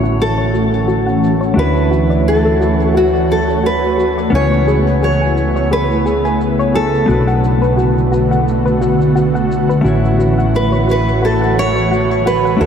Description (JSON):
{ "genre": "sunset chillout", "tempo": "87 BPM", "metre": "4/4", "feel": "swing 56% on 16ths", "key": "A major", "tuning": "A4 = 441 Hz", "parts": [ { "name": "nylon-string guitar", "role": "melody", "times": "0.0-12.7 s", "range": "F#4 to C#5", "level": "-18 LUFS", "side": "equal", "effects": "lush chorus, ping-pong delay" }, { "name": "hollow-body jazz guitar", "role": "accompaniment", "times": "0.0-12.7 s", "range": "A3 to G#5", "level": "-22 LUFS", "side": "moving between left 3 dB and right 3 dB", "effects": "auto-pan, low-pass filter, ping-pong delay" }, { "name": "ethereal airy pad", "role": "sustained chords", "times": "0.0-12.7 s", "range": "C#3 to C#5", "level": "-17 LUFS", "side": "right 1 dB", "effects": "ensemble chorus, built-in reverb" }, { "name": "soft round pluck", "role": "arpeggios", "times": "0.0-12.6 s", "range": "F#4 to G#5", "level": "-20 LUFS", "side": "left 2 dB", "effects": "analog chorus, ping-pong delay" }, { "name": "mellow fretless electric bass", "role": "bass", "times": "0.0-12.7 s", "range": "A1 to D2", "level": "-18 LUFS", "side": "equal", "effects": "none" }, { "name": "shaker", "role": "drums", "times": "0.1-12.7 s", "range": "none", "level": "-49 LUFS", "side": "left 1 dB", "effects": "none" } ], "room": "wet cathedral reverb, RT60 5.9 s", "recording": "dreamy mix soaked in reverb", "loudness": "-12 LUFS", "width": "side -8 dB against mid", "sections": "0.0-12.7 A section", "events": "filter sweep on ambient pad 0.0-12.7; filter sweep on synth pluck 0.0-12.7", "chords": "0.0 A6; 1.6 Dmaj9; 4.3 C#m7; 7.1 Bm7; 9.8 A6" }